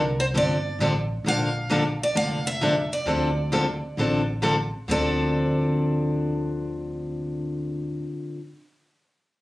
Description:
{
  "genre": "acoustic string swing (jazz manouche)",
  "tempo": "132 BPM",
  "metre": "4/4",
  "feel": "swing 65% on 8ths",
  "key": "D minor",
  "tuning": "A4 = 444 Hz",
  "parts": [
    { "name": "picked steel-string acoustic guitar", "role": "melody", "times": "0.0-8.1 s", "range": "Bb4 to F5", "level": "-28 LUFS", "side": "right 1 dB", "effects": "none" },
    { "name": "upright bass", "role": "bass", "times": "0.0-8.0 s", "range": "F1 to D2", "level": "-29 LUFS", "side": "equal", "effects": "none" },
    { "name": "picked steel-string acoustic guitar", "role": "accompaniment", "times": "0.3-8.4 s", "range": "D3 to A4", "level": "-24 LUFS", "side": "left 1 dB", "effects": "none" }
  ],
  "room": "moderate club reverb, RT60 0.7 s",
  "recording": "recorded on a phone in the room, club reverb",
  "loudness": "-22 LUFS",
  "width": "side -18 dB against mid",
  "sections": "0.0-1.3 A section; 1.3-4.9 B section; 4.9-8.5 C section",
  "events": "none",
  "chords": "0.0 Dm7; 1.3 Bbmaj7; 3.1 Dm7"
}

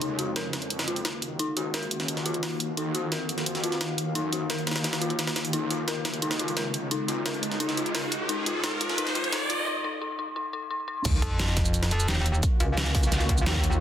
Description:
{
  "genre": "dark technical drum and bass",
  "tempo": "174 BPM",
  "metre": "4/4",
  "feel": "straight",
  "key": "Eb minor",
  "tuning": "A4 = 441 Hz",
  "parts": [
    { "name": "swarming drone", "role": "sustained chords", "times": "0.0-13.8 s", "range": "Db3 to F5", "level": "-34 LUFS", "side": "equal", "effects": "built-in reverb, sidechain pumping" },
    { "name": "dark detuned synth bell", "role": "arpeggios", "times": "0.0-11.0 s", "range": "Eb4 to Bb4", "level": "-32 LUFS", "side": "left 3 dB", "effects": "chorus, sidechain pumping, low-pass filter, dub echo" },
    { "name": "wide detuned saw bass", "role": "bass", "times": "0.0-11.2 s", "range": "Cb2 to Gb2", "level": "-36 LUFS", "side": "equal", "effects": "chorus, overdrive, high-pass filter" },
    { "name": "dubstep drum kit", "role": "drums", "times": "0.0-13.8 s", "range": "crash cymbal, hi-hat, shaker, snare drum", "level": "-31 LUFS", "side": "right 1 dB", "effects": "overdrive" },
    { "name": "jungle sampler-style drum kit", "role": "drums", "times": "0.0-13.7 s", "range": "hi-hat, snare drum", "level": "-34 LUFS", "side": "equal", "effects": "high-pass filter on hats, high-pass filter on snare, high-pass filter on room" },
    { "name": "riser and sub drop", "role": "sound effects", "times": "6.9-12.4 s", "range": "none", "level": "-32 LUFS", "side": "equal", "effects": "none" },
    { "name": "electronic kick drum", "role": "drums", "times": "11.1-13.6 s", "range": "none", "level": "-26 LUFS", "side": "equal", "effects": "overdrive" },
    { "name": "metallic wobble bass", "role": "bass", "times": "11.2-13.8 s", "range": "Db2 to F2", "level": "-26 LUFS", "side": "equal", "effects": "chorus" }
  ],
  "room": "light reverb",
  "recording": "dense, heavily limited modern master, high-pass filter",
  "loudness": "-25 LUFS",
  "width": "side -10 dB against mid",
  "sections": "0.0-11.1 A section; 11.1-13.8 B section",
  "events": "build-up 0.0-11.1; filter sweep on synth drone 0.0-11.1; filter sweep on synth bell 0.0-11.1; riser 6.9-9.7; break 9.7-11.1; drop 11.1-13.8; impact 11.1-12.4",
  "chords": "0.0 Ebm; 5.5 Db; 11.1 Ebm"
}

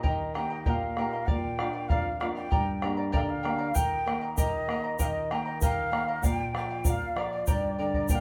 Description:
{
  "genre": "andean folk, Andean ensemble",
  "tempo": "97 BPM",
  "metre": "2/4",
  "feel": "straight",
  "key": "unclear",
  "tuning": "A4 = 442 Hz",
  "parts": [
    { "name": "mellow hollow quena", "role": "melody", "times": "0.0-8.2 s", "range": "D5 to A5", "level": "-35 LUFS", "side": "equal", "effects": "none" },
    { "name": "charango", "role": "accompaniment", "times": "0.0-8.2 s", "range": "G4 to Bb5", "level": "-36 LUFS", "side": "equal", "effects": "none" },
    { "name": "flamenco guitar", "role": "accompaniment", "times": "0.0-8.2 s", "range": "F2 to Bb4", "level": "-36 LUFS", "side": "equal", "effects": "none" },
    { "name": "bombo", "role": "percussion", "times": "0.0-8.2 s", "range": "none", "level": "-33 LUFS", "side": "equal", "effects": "none" },
    { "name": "tube shaker", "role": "percussion", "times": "3.8-8.2 s", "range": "none", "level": "-41 LUFS", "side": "equal", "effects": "none" }
  ],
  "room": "moderate studio reverb, RT60 0.6 s",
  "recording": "none",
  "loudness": "-29 LUFS",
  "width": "mono",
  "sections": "0.0-3.8 A section; 3.8-8.2 A section",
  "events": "none",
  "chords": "0.0 Eb; 1.3 Bb; 2.5 Gm; 3.8 Eb; 6.2 Bb; 7.5 Gm"
}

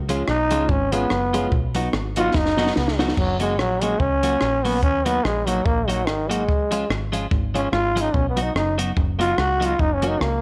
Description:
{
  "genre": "ska",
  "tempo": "145 BPM",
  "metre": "4/4",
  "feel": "swing 57% on 8ths",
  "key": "F# major",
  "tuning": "A4 = 437 Hz",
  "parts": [
    { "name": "deep dub fingered electric bass", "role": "bass", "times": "0.0-10.4 s", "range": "F#1 to D#2", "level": "-28 LUFS", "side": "equal", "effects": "none" },
    { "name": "clean electric guitar", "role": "accompaniment", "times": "0.1-10.2 s", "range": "E#3 to F#4", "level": "-30 LUFS", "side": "equal", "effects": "none" },
    { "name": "dark upright piano", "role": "stabs", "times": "0.1-3.1, 10.0-10.2 s", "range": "G#3 to F#4", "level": "-32 LUFS", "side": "equal", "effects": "none" },
    { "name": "compact cocktail drum kit", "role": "drums", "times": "0.1-10.3 s", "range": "crash cymbal, hi-hat, kick drum, rim click, snare drum", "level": "-27 LUFS", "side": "equal", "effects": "none" },
    { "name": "growling trombone", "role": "melody", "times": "0.3-10.4 s", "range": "D#3 to F#4", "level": "-24 LUFS", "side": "equal", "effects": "none" }
  ],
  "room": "moderate echo chamber reverb, RT60 1.3 s, small room ambience",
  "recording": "none",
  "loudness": "-21 LUFS",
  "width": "mono",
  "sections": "0.0-3.2 A section; 3.2-10.4 A section",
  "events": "trombone solo 0.0-3.2, 3.2-10.4; drum fill 2.3-3.2",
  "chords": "0.0 C#; 1.5 B; 3.2 F#; 4.8 D#m; 6.5 C#; 8.1 B; 9.8 F#"
}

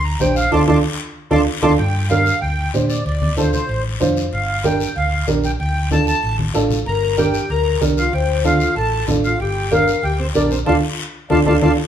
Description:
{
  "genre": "latin, cumbia",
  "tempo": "189 BPM",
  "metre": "4/4",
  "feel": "straight",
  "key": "G minor",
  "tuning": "A4 = 440 Hz",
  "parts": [
    { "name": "accordion", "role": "melody", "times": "0.0-11.7 s", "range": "C5 to D6", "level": "-22 LUFS", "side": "right 1 dB", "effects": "light tremolo tuning" },
    { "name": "hollow-body short-scale fingered electric bass", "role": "bass", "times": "0.0-11.7 s", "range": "G1 to Bb2", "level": "-21 LUFS", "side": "equal", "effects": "none" },
    { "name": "dark upright piano", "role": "accompaniment", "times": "0.2-11.7 s", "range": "D4 to C5", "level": "-19 LUFS", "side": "right 3 dB", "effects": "none" },
    { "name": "congas", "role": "percussion", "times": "0.2-11.7 s", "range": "none", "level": "-23 LUFS", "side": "left 1 dB", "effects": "none" },
    { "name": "guiro", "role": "percussion", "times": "0.2-11.7 s", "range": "none", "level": "-30 LUFS", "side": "left 6 dB", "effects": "none" },
    { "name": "breathy clarinet", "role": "second line", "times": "6.9-11.7 s", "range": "C4 to C5", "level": "-22 LUFS", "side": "left 9 dB", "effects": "none" }
  ],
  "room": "moderate large studio reverb, RT60 0.9 s",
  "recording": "band playing live in one room, lossy compression artefacts",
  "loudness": "-15 LUFS",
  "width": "side -9 dB against mid",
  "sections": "0.0-1.8 A section; 1.8-11.9 B section",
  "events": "accordion solo 0.0-1.8; band accent 0.5-1.8, 10.7-11.9; drum fill 0.8-1.8, 6.4-6.9, 11.5-11.9",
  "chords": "0.0 Gm; 0.5 Dm7; 1.8 Gm; 3.1 Dm7; 4.3 Gm; 5.6 Dm; 6.9 Gm; 8.1 Dm7; 9.4 Gm; 10.7 Dm"
}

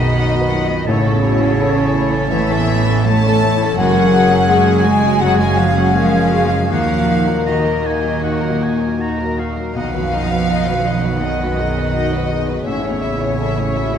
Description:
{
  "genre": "cinematic, emotional film score for orchestra",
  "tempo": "81 BPM",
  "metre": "4/4",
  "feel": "uneven beats, rubato",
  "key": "unclear",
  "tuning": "A4 = 439 Hz",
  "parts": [
    { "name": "warm studio violin section", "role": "melody", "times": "0.0-14.0 s", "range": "F#4 to F#5", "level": "-26 LUFS", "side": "left 6 dB", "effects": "none" },
    { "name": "bright oboe", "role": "second line", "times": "0.0-14.0 s", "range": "E5 to B5", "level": "-26 LUFS", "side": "right 3 dB", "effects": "none" },
    { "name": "mellow hollow small flute group", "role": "second line", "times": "0.0-14.0 s", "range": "C#5 to A5", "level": "-24 LUFS", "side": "left 1 dB", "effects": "none" },
    { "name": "warm clarinet", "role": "second line", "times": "0.0-14.0 s", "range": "A#3 to E4", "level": "-29 LUFS", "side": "left 4 dB", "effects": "none" },
    { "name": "warm studio violin section", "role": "second line", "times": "0.0-14.0 s", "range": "C#5 to A5", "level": "-24 LUFS", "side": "left 3 dB", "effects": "none" },
    { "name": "felt-muted upright piano", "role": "accompaniment", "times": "0.0-14.0 s", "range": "A1 to C#5", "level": "-23 LUFS", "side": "left 2 dB", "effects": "none" },
    { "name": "warm studio viola section", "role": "accompaniment", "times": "0.0-14.0 s", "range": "D#3 to G#4", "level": "-25 LUFS", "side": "right 1 dB", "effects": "none" },
    { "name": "mellow French horn section", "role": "sustained chords", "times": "0.0-14.0 s", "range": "E4 to B4", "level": "-24 LUFS", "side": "left 6 dB", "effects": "none" },
    { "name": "concert harp", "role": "arpeggios", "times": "0.0-14.0 s", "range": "F#2 to C#6", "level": "-26 LUFS", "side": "left 8 dB", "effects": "none" },
    { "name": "rich studio double bass section", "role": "bass", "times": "0.0-14.0 s", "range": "F#1 to D#2", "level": "-21 LUFS", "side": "right 4 dB", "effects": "none" },
    { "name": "warm studio cello section", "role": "bass", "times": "0.0-14.0 s", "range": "C#3 to A3", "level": "-20 LUFS", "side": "right 4 dB", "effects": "none" }
  ],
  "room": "wet concert hall reverb, RT60 1.8 s",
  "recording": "dark, warm production",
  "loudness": "-13 LUFS",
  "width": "side -8 dB against mid",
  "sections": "0.0-14.0 A section",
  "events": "none",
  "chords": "0.0 B; 0.9 A; 3.8 F#sus2; 6.7 D#m; 9.7 B; 12.7 A"
}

